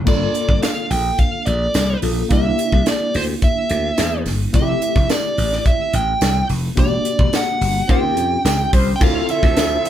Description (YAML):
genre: polished 1980s jazz-funk pop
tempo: 107 BPM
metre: 4/4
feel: straight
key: unclear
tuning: A4 = 440 Hz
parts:
  - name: tine electric piano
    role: accompaniment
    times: 0.0-9.9 s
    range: A3 to A4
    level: -24 LUFS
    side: left 2 dB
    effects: overdrive, fast stereo tremolo
  - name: slap bass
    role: bass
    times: 0.0-9.8 s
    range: E1 to F2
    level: -21 LUFS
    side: equal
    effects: none
  - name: dark smooth lead guitar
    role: melody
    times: 0.1-9.9 s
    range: C5 to G5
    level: -21 LUFS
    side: right 2 dB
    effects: overdrive
  - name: crisp fusion drum kit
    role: drums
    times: 0.1-9.9 s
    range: crash cymbal, hi-hat, kick drum, snare drum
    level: -19 LUFS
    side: equal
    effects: none
  - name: tambourine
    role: percussion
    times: 0.1-9.9 s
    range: none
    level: -36 LUFS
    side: right 6 dB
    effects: none
  - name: mellow horn section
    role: second line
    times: 7.9-9.9 s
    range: F3 to C5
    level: -26 LUFS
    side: equal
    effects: none
  - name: muted studio string section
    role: sustained chords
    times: 9.0-9.9 s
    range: D3 to E5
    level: -28 LUFS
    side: right 3 dB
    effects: none
room: light reverb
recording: band playing live in one room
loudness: -15 LUFS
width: side -11 dB against mid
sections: 0.1-9.0 A section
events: band accent 6.8-9.0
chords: 0.1 Gm7; 2.3 C7; 4.5 Fmaj9; 6.8 Em7b5; 7.9 Eb13; 9.0 Dm9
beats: | 0.07 0.63 1.19 1.75 | 2.31 2.86 3.42 3.98 | 4.54 5.10 5.66 6.22 | 6.78 7.33 7.89 8.45 | 9.01 9.57